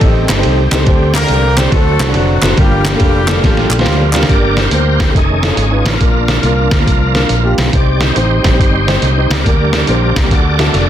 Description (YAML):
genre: uptempo gospel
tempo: 140 BPM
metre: 4/4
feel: swing 65% on 8ths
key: G minor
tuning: A4 = 440 Hz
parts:
  - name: clear horn section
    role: melody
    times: 0.0-4.1 s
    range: F#3 to C5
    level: -18 LUFS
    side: left 1 dB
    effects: none
  - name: warm concert grand piano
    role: accompaniment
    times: 0.0-10.9 s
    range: G2 to Bb5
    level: -18 LUFS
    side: left 1 dB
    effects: none
  - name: bright tonewheel organ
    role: sustained chords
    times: 0.0-10.9 s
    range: D3 to D5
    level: -18 LUFS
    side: right 2 dB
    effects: slow rotary speaker, overdrive, chorus vibrato
  - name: fingered electric bass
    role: bass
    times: 0.0-10.9 s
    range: F1 to D2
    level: -15 LUFS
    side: equal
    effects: none
  - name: trip hop sampler-style drum kit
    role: drums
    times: 0.0-10.9 s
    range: hi-hat, kick drum, ride cymbal, snare drum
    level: -14 LUFS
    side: equal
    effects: none
  - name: group handclap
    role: percussion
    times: 0.3-4.2 s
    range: none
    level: -22 LUFS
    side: right 1 dB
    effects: none
room: light reverb, digital ambience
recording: dense, heavily limited modern master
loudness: -9 LUFS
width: side -10 dB against mid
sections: 0.0-4.3 A section; 4.3-10.9 B section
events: drum fill 3.4-4.3, 10.7; tonewheel organ solo 4.3-10.9; grand piano fill 9.9-10.9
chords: 0.0 Am7b5; 0.9 D7sus4; 1.7 D7; 2.6 Gm7; 4.3 Gm; 5.2 F7alt; 6.0 Bb; 7.7 Cm; 9.5 Gm/D; 10.3 D